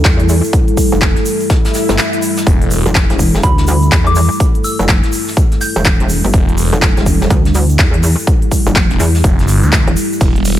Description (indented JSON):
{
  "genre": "bass house",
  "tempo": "124 BPM",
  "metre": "4/4",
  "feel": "swing 62% on 16ths",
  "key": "E phrygian",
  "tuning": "A4 = 440 Hz",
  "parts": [
    { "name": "deep dark ambient pad", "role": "sustained chords", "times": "0.0-10.6 s", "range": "G3 to A4", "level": "-19 LUFS", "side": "equal", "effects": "chorus, built-in reverb, sidechain pumping" },
    { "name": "pulsing pluck wobble bass", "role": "bass", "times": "0.0-10.0 s", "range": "E1 to E2", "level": "-13 LUFS", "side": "equal", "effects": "chorus, tube saturation, sidechain pumping" },
    { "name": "big-room dance drum kit", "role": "drums", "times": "0.0-10.6 s", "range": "handclaps, hi-hat, ride cymbal", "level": "-19 LUFS", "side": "equal", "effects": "none" },
    { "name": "electronic kick drum", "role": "drums", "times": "0.0-10.3 s", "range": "none", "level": "-12 LUFS", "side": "equal", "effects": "none" },
    { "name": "snare drum and shaker", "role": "drums", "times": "0.0-10.6 s", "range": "none", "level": "-28 LUFS", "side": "equal", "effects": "none" },
    { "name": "egg shaker", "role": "percussion", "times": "0.1-10.6 s", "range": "none", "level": "-29 LUFS", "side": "right 3 dB", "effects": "none" },
    { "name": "swell", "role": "sound effects", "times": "1.6-2.5 s", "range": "none", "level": "-25 LUFS", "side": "left 2 dB", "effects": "none" },
    { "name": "phased detuned saw bass", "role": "bass", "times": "2.5-2.8, 6.3-10.6 s", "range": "E1 to D2", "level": "-14 LUFS", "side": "equal", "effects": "phaser, overdrive, sidechain pumping" },
    { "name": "soft synth bell", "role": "melody", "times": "3.4-6.1 s", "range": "B5 to G6", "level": "-20 LUFS", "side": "left 1 dB", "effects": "chorus, phaser, analog delay" }
  ],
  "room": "light reverb, digital ambience",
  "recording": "none",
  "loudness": "-10 LUFS",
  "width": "side -12 dB against mid",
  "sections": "0.0-10.6 A section",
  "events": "swell 1.6-2.5",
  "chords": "0.0 Em"
}